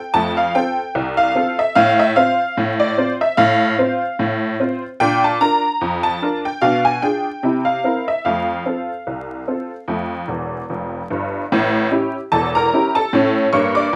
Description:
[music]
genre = ragtime piano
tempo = 74 BPM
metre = 2/4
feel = swing 56% on 16ths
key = F major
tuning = A4 = 438 Hz
[part]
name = honky-tonk upright piano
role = solo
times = 0.0-14.0 s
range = E1 to D6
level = -18 LUFS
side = equal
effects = none
[sound]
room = moderate studio ambience, RT60 0.5 s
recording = vinyl crackle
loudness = -18 LUFS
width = mono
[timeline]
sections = 0.0-11.5 A section; 11.5-14.0 B section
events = honky-tonk piano fill 10.3-11.5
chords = 0.0 F; 1.8 F/A; 5.0 Bb; 6.6 Bdim7; 7.4 C7; 8.2 F; 11.5 A7

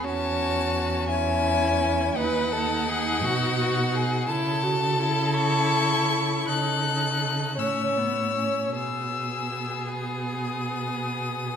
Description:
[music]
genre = classical, slow romantic movement for string quartet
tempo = 50-57 BPM (dotted quarters)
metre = 12/8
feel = rubato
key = unclear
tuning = A4 = 444 Hz
[part]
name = rich violin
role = melody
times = 0.0-11.6 s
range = F#5 to F#6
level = -28 LUFS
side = left 6 dB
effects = none
[part]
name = rich violin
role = second line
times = 0.0-11.6 s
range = E4 to C#5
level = -29 LUFS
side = equal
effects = none
[part]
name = warm viola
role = accompaniment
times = 0.0-11.6 s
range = B3 to F#4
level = -30 LUFS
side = right 2 dB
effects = none
[part]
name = warm cello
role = bass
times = 0.0-11.6 s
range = D#2 to C#3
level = -29 LUFS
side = right 1 dB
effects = none
[sound]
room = moderate concert hall reverb, RT60 2.1 s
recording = minimal, uncompressed stereo recording, vinyl crackle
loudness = -23 LUFS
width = side -8 dB against mid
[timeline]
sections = 0.0-11.6 A section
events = none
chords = 0.0 F#m7/E; 2.2 B/D#; 4.3 A/C#; 6.5 F#m7/C#; 8.7 B

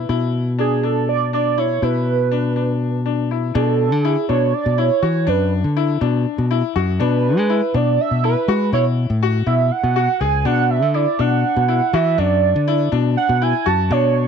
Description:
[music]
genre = progressive instrumental, band music in an uneven meter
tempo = 243 BPM (eighths)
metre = 7/8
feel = straight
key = B dorian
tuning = A4 = 440 Hz
[part]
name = pulse-width lead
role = melody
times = 0.0-14.3 s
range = G#4 to A5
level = -19 LUFS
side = right 11 dB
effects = chorus
[part]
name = bright grand piano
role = arpeggios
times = 0.0-14.3 s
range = D4 to G#4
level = -23 LUFS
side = left 15 dB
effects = none
[part]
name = modern bright fingered electric bass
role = bass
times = 0.0-14.3 s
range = C#2 to G#3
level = -18 LUFS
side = left 2 dB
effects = none
[sound]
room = small room ambience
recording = 1960s-style stereo with parts hard left and right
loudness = -16 LUFS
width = side -7 dB against mid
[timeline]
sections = 0.0-3.6 A section; 3.6-14.3 B section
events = analog synth lead solo 3.6-14.3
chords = 0.0 E5/B; 3.6 Bm7; 7.0 E7/B; 8.7 F#m7; 10.5 Bm

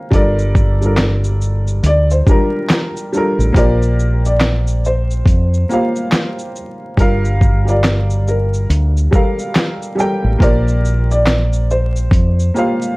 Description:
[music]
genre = lo-fi hip hop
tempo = 70 BPM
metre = 4/4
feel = swing 61% on 16ths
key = unclear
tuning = A4 = 442 Hz
[part]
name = felt-muted upright piano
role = melody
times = 0.0-13.0 s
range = Bb4 to D5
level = -22 LUFS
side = equal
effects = none
[part]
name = dark upright piano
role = accompaniment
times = 0.0-13.0 s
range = G3 to G5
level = -20 LUFS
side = equal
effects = cassette tape
[part]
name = deep dub fingered electric bass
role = bass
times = 0.1-12.5 s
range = G1 to F2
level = -14 LUFS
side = equal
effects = none
[part]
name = dusty soul sampler-style drum kit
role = drums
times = 0.1-13.0 s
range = handclaps, hi-hat, kick drum, shaker, snare drum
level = -15 LUFS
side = equal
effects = overdrive, vintage 12-bit sampler grit
[sound]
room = light reverb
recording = vinyl crackle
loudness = -12 LUFS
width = side -23 dB against mid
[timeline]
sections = 0.0-3.5 A section; 3.5-13.0 B section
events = none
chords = 0.1 Gm7; 3.5 Bb6; 7.0 Gm7; 10.4 Bb6

